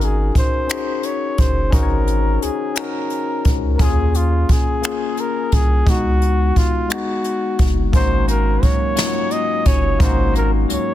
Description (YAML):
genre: slow six-eight R&B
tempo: 58 BPM (dotted quarters)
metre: 6/8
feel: straight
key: Ab mixolydian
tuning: A4 = 441 Hz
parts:
  - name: breathy flugelhorn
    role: melody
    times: 0.0-10.9 s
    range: F4 to Eb5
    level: -23 LUFS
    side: equal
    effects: tape echo
  - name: semi-hollow electric guitar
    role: second line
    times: 0.0-0.2, 7.9-10.9 s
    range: Ab2 to Gb4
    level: -27 LUFS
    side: right 7 dB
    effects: wide subtle chorus
  - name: barky tine electric piano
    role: accompaniment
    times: 0.0-10.9 s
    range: Ab3 to Db5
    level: -23 LUFS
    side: moving between left 12 dB and left 4 dB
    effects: overdrive, auto-pan
  - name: round analog bass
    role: bass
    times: 0.0-10.8 s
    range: Gb1 to Eb2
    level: -19 LUFS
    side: equal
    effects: none
  - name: jazz brush drum kit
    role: drums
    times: 0.0-10.9 s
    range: finger snaps, hi-hat, kick drum, snare drum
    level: -18 LUFS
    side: equal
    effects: soft clipping on snare
room: little or no reverb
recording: dense, heavily limited modern master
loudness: -15 LUFS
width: side -13 dB against mid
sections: 0.0-10.9 A section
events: none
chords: 0.0 Ab9sus4; 3.8 Eb9sus4; 5.9 Db9sus4; 7.9 Ab9sus4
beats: 0.69 | 1.73 2.76 | 3.79 4.83 | 5.86 6.90 | 7.93 8.97 | 10.00